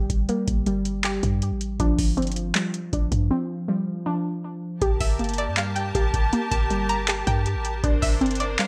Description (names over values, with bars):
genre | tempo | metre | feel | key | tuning
hip hop, trap | 159 BPM | 4/4 | half-time | G minor | A4 = 440 Hz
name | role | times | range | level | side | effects
warbly lo-fi synth keys | accompaniment | 0.0-4.8 s | F3 to G3 | -31 LUFS | equal | chorus
warbly dusty pluck | arpeggios | 0.0-8.7 s | G3 to G4 | -30 LUFS | equal | chorus, phaser, delay
warm 808-style bass | bass | 0.0-8.6 s | G1 to G2 | -30 LUFS | equal | none
booming analog drum machine | drums | 0.1-8.7 s | handclaps, hi-hat, kick drum | -27 LUFS | equal | vintage 12-bit sampler grit
rich symphonic string section | sustained chords | 4.8-8.7 s | D4 to A5 | -32 LUFS | equal | none
string-like resonator pluck | second line | 5.0-8.7 s | D5 to Bb5 | -32 LUFS | equal | chorus, delay
room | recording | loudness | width
light reverb | bright 1980s-style digital production | -24 LUFS | mono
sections
0.0-4.8 A section; 4.8-8.7 B section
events
break 3.3-4.8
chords
0.0 Gmadd9; 1.8 G7sus4; 4.8 Gmadd9; 7.8 Bbadd9/G